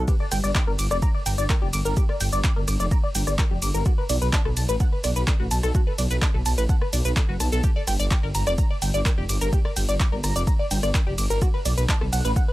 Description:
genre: melodic techno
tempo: 127 BPM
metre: 4/4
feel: straight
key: unclear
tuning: A4 = 438 Hz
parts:
  - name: tight sequenced synth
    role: arpeggios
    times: 0.0-12.5 s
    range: F#4 to D6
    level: -28 LUFS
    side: equal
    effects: chorus, vintage 12-bit sampler grit, sidechain pumping, analog delay
  - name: swelling detuned saw bass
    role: bass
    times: 0.0-12.3 s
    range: F1 to B1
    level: -24 LUFS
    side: equal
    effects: sidechain pumping
  - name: electronic kick drum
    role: drums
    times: 0.1-12.5 s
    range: none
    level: -21 LUFS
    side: equal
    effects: overdrive
  - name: punchy analog drum machine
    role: drums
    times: 0.1-12.5 s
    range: handclaps, hi-hat, ride cymbal, rim click, shaker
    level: -30 LUFS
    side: equal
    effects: overdrive, sidechain pumping on hats, sidechain pumping on perc, sidechain pumping on cymbals
room: little or no reverb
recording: dry, gritty hardware recording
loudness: -20 LUFS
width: side -17 dB against mid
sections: 0.0-12.5 A section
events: none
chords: 0.1 Gm; 3.9 B7(no3); 7.6 Gm; 11.4 B7(no3)

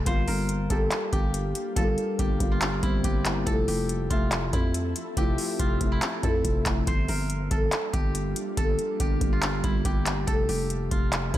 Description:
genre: hip hop, trap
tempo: 141 BPM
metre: 4/4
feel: half-time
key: G dorian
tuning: A4 = 440 Hz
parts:
  - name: steel-string zither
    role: melody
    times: 0.0-11.4 s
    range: E4 to C5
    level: -31 LUFS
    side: left 1 dB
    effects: low-pass filter
  - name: growling 808-style bass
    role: bass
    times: 0.0-11.4 s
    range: F1 to F2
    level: -29 LUFS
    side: equal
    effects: none
  - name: dark concert grand piano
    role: accompaniment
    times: 0.1-6.9 s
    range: F3 to E5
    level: -32 LUFS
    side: left 2 dB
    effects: low-pass filter
  - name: ethereal airy pad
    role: sustained chords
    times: 1.0-11.4 s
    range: F3 to E5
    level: -36 LUFS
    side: right 2 dB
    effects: ensemble chorus, built-in reverb
  - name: booming analog drum machine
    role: drums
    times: 0.1-11.4 s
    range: handclaps, hi-hat, kick drum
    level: -26 LUFS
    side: equal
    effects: overdrive
room: little or no reverb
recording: none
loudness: -23 LUFS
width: side -13 dB against mid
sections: 0.0-11.4 A section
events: none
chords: 0.1 Gm7; 3.5 Fmaj7; 6.9 Gm7; 10.3 Fmaj7

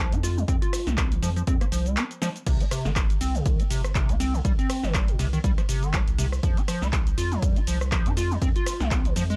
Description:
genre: acid house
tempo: 121 BPM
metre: 4/4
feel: swing 56% on 16ths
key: unclear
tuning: A4 = 440 Hz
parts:
  - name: acid bass, square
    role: riff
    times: 0.0-9.4 s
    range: Bb2 to F4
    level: -32 LUFS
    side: equal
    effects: overdrive, lush chorus, sidechain pumping, tape echo
  - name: round analog bass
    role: bass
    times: 0.0-9.4 s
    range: G1 to F2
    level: -30 LUFS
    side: equal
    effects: sidechain pumping
  - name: punchy analog drum machine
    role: drums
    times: 0.1-9.4 s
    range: cabasa, crash cymbal, handclaps, hi-hat, ride cymbal, rim click, snare drum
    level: -34 LUFS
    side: equal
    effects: none
  - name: electronic kick drum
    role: drums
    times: 0.5-9.0 s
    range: none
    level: -27 LUFS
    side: equal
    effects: none
room: little or no reverb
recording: dry, gritty hardware recording, transformer saturation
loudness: -25 LUFS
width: mono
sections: 0.0-9.4 A section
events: break 2.0-2.5; drum fill 2.2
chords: 0.0 F5; 2.5 Cm; 6.4 F5

